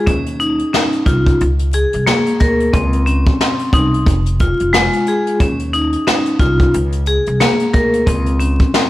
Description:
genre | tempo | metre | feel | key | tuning
hip hop, boom-bap hip-hop | 90 BPM | 4/4 | swing 58% on 16ths | unclear | A4 = 440 Hz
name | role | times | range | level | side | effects
vibraphone with hard mallets | accompaniment | 0.0-8.9 s | Ab3 to Bb4 | -16 LUFS | left 1 dB | high-pass filter, low-pass filter
upright bass | bass | 0.1-8.6 s | F1 to Eb2 | -18 LUFS | equal | none
jazz brush drum kit | drums | 0.1-8.9 s | hi-hat, kick drum, snare drum | -16 LUFS | equal | none
room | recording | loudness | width
light reverb, studio reverb | vinyl crackle | -12 LUFS | side -16 dB against mid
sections
0.0-8.9 A section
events
none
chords
0.1 Ebsus2; 1.4 Bbm7; 2.7 Dbsus2; 4.1 Fm; 5.4 Ebsus2; 6.7 Bbm7; 8.1 N.C.

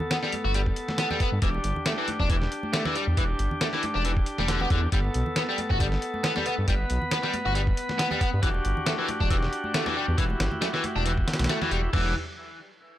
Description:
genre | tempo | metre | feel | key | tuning
breakbeat, breaks | 137 BPM | 4/4 | swing 54% on 16ths | E minor | A4 = 440 Hz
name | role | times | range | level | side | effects
bright tonewheel organ | sustained chords | 0.0-12.1 s | F#3 to B4 | -31 LUFS | equal | lush chorus, sidechain pumping
congas | percussion | 0.0-11.8 s | none | -37 LUFS | right 1 dB | none
biting overdriven guitar | riff | 0.1-12.1 s | D3 to F#4 | -29 LUFS | left 1 dB | vintage 12-bit sampler grit, analog delay
dusty soul sampler-style drum kit | drums | 0.1-12.0 s | crash cymbal, hi-hat, kick drum, snare drum, toms | -28 LUFS | equal | none
dark detuned saw bass | bass | 0.4-12.1 s | E1 to G2 | -27 LUFS | equal | none
room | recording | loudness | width
little or no reverb | dry, gritty hardware recording, transformer saturation | -23 LUFS | side -13 dB against mid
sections
0.0-11.9 A section; 11.9-13.0 B section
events
drop 0.0-11.9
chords
0.0 Gadd9; 1.4 Em7; 4.9 Gadd9; 8.4 Em9

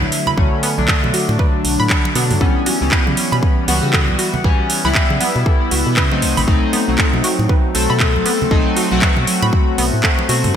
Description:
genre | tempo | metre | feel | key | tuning
deep house | 118 BPM | 4/4 | swing 59% on 16ths | B minor | A4 = 440 Hz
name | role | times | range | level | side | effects
chorused polysynth | stabs | 0.0-10.6 s | D3 to A4 | -18 LUFS | left 2 dB | sidechain pumping, ping-pong delay
organ-like FM bass | bass | 0.0-10.5 s | A1 to C#3 | -20 LUFS | equal | sidechain pumping
congas | percussion | 0.0-10.5 s | none | -27 LUFS | right 3 dB | none
house drum kit | drums | 0.1-10.5 s | handclaps, hi-hat | -20 LUFS | right 1 dB | gated reverb
analog pluck | arpeggios | 0.3-10.3 s | B3 to B5 | -24 LUFS | right 2 dB | chorus, sidechain pumping, digital delay
electronic kick drum | drums | 0.4-10.2 s | none | -16 LUFS | equal | none
room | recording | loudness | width
moderate lush hall reverb, RT60 2.4 s | bright 1980s-style digital production | -13 LUFS | side -9 dB against mid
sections
0.0-10.6 A section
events
none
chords
0.0 Bm9; 2.4 C#m7b5; 6.2 B7b9

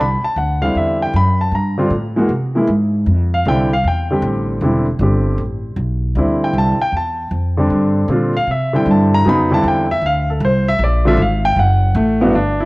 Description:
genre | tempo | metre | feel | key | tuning
jazz piano trio | 155 BPM | 4/4 | swing 65% on 8ths | C major | A4 = 441 Hz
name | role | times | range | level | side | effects
warm grand piano | melody | 0.0-12.7 s | G2 to B5 | -16 LUFS | equal | cassette tape
upright bass | bass | 0.0-12.7 s | E1 to C3 | -17 LUFS | equal | tube saturation
room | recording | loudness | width
moderate spring reverb, RT60 1.6 s | home recording on cassette | -13 LUFS | side -22 dB against mid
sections
0.0-12.3 A section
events
grand piano solo 0.0-12.3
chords
0.0 Cadd9; 1.5 Gmadd9; 2.3 Caug; 3.1 Fmaj9; 4.6 Cadd9/E; 5.4 Asus2; 6.2 Dm9; 7.7 Gm7; 8.5 Cadd9; 9.3 Fsus2; 10.8 Bb7; 11.6 D (rootless)

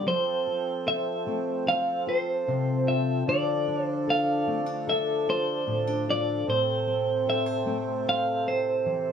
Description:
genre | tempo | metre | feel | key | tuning
acoustic folk duo or small band | 75 BPM | 4/4 | straight | unclear | A4 = 440 Hz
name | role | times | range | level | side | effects
clean electric guitar | melody | 0.0-9.1 s | C5 to F5 | -27 LUFS | right 1 dB | tremolo
fingerpicked steel-string acoustic guitar | accompaniment | 0.0-9.1 s | A2 to C5 | -30 LUFS | left 4 dB | none
hand-pumped harmonium | sustained chords | 0.0-9.1 s | C3 to D5 | -31 LUFS | right 4 dB | none
room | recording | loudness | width
wet studio ambience, RT60 0.5 s | band playing live in one room | -24 LUFS | side -7 dB against mid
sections
0.1-9.1 A section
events
none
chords
0.1 F; 3.3 Dm; 6.5 Am

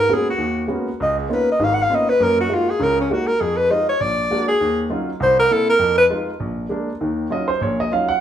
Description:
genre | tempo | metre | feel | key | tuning
jazz | 200 BPM | 4/4 | swing 60% on 8ths | Eb minor | A4 = 440 Hz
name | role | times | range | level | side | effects
breathy alto saxophone | melody | 0.0-6.1 s | Db4 to Gb5 | -17 LUFS | equal | none
warm grand piano | accompaniment | 0.0-8.2 s | Ab1 to Gb5 | -21 LUFS | right 1 dB | none
room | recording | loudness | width
wet large studio reverb, RT60 0.9 s | band playing live in one room | -16 LUFS | side -10 dB against mid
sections
0.0-7.0 A section; 7.0-8.2 A section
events
alto saxophone solo 0.0-7.0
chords
0.0 Abm11; 1.0 Db13; 2.2 Gb69; 3.4 Fm7b5; 4.0 Bbaug7; 4.6 Ebm9; 5.2 C7; 5.8 Fm7; 6.4 Bb7; 7.0 Ebm9

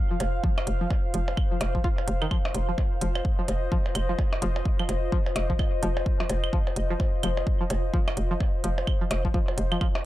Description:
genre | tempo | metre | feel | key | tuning
minimal techno | 128 BPM | 4/4 | swing 60% on 16ths | unclear | A4 = 440 Hz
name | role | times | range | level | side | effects
warbly tape-like pad | texture | 0.0-10.1 s | F4 to F5 | -33 LUFS | left 2 dB | chorus, built-in reverb, sidechain pumping
string-like resonator pluck | riff | 0.1-9.9 s | Eb3 to F4 | -33 LUFS | equal | chorus, sidechain pumping, analog delay
hollow knocking FM bass | bass | 0.2-9.8 s | F1 | -28 LUFS | equal | sidechain pumping
electronic hi-hat | drums | 0.2-9.7 s | none | -36 LUFS | right 2 dB | none
percussion blips and claves | percussion | 0.2-10.0 s | none | -34 LUFS | right 2 dB | analog delay
electronic kick drum | drums | 0.4-9.9 s | none | -26 LUFS | equal | none
room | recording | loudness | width
digital ambience | dry, gritty hardware recording | -24 LUFS | side -15 dB against mid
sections
0.0-10.1 A section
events
none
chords
0.0 F5

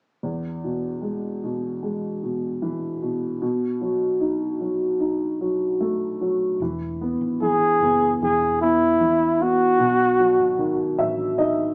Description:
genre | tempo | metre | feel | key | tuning
pop | 76 BPM | 4/4 | straight | E major | A4 = 439 Hz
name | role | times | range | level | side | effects
dark upright piano | accompaniment | 0.2-11.7 s | E2 to E5 | -25 LUFS | equal | none
vintage muted fingered electric bass | bass | 6.6-11.7 s | E1 to B1 | -40 LUFS | equal | none
breathy flugelhorn | melody | 7.4-11.0 s | E4 to G#4 | -20 LUFS | equal | none
room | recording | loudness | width
wet studio reverb, RT60 0.6 s | band playing live in one room, small speaker sound | -22 LUFS | mono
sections
0.2-6.6 A section; 6.6-11.7 B section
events
upright piano fill 10.6-11.7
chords
0.2 E; 3.4 B7; 6.6 E; 9.8 B7

